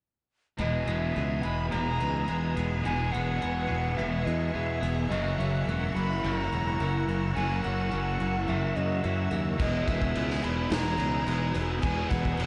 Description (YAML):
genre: rock, shoegaze and dream pop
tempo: 107 BPM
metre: 4/4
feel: straight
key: E lydian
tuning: A4 = 440 Hz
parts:
  - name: silver concert flute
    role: melody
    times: 0.6-12.5 s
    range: D#5 to B5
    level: -36 LUFS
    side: equal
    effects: diffuse ambient delay
  - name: ensemble organ-string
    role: sustained chords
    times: 0.6-12.5 s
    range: A#4 to E6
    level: -41 LUFS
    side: equal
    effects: ensemble chorus
  - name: picked twelve-string acoustic guitar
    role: arpeggios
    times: 0.6-12.5 s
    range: F#3 to B4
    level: -43 LUFS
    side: equal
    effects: lush chorus, diffuse ambient delay
  - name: crunchy overdriven guitar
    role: riff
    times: 0.6-12.5 s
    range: E2 to F#3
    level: -38 LUFS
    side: equal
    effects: none
  - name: thick fuzz guitar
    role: riff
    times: 0.6-12.5 s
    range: E2 to F#3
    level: -36 LUFS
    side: equal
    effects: distortion, subtle chorus
  - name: twangy electric guitar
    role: riff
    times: 0.6-12.5 s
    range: E2 to G#4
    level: -39 LUFS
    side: equal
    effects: reverse reverb
  - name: modern bright fingered electric bass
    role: bass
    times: 0.6-12.5 s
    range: E1 to F#2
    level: -34 LUFS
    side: equal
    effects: none
  - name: raw garage drum kit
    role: drums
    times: 9.6-12.5 s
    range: crash cymbal, kick drum, snare drum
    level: -34 LUFS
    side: equal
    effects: none
room: moderate huge ambient reverb, RT60 6.6 s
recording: dreamy mix soaked in reverb, nothing above 11.0 kHz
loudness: -29 LUFS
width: mono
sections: 0.6-12.5 A section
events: none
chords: 0.6 Emaj7; 5.1 F#7; 9.6 Emaj7